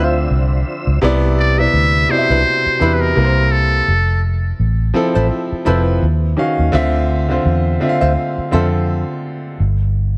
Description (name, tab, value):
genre	R&B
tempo	84 BPM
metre	4/4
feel	swing 57% on 16ths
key	D dorian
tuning	A4 = 440 Hz
part	archtop guitar, miked and amplified	second line	0.0-8.7 s	D4 to E5	-25 LUFS	equal	wah
part	bright upright piano	accompaniment	0.0-9.6 s	B2 to G5	-20 LUFS	equal	none
part	tonewheel organ	sustained chords	0.0-1.0 s	D3 to E5	-28 LUFS	equal	chorus vibrato, slow rotary speaker
part	vintage muted fingered electric bass	bass	0.0-10.2 s	F1 to F2	-18 LUFS	equal	none
part	trumpet with metal mute	melody	1.4-4.2 s	A4 to E5	-19 LUFS	equal	none
room	light reverb, studio ambience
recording	none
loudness	-16 LUFS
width	mono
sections	0.0-1.0 A section; 1.0-10.2 B section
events	none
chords	0.0 Dm9; 1.0 Cmaj9; 3.1 C7; 3.9 Fmaj7; 6.0 Ebm9; 6.7 Dm9; 9.6 N.C.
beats	0.29 | 1.00 1.72 2.43 3.15 | 3.86 4.58 5.29 6.00 | 6.72 7.43 8.15 8.86 | 9.58